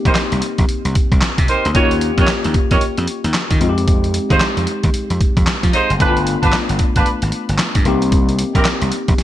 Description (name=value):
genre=R&B, new jack swing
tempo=113 BPM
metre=4/4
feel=swing 62% on 16ths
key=F minor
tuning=A4 = 441 Hz
part: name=tine electric piano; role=accompaniment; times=0.0-9.2 s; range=Ab3 to G4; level=-22 LUFS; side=left 3 dB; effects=wide subtle chorus
part: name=mellow horn section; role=stabs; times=0.1-8.7 s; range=C4 to Db5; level=-19 LUFS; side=right 2 dB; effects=none
part: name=gritty slap bass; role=bass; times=0.1-9.2 s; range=Gb1 to F3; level=-18 LUFS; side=equal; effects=overdrive
part: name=boom bap sampler-style drum kit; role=drums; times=0.1-9.2 s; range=handclaps, hi-hat, kick drum, snare drum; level=-17 LUFS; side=equal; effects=gated reverb
room=light reverb, digital ambience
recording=bright 1980s-style digital production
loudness=-14 LUFS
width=side -13 dB against mid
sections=0.0-9.2 A section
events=none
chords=0.0 Cm7; 1.8 Eb7; 3.6 Fm7; 6.0 G7; 7.9 Cm7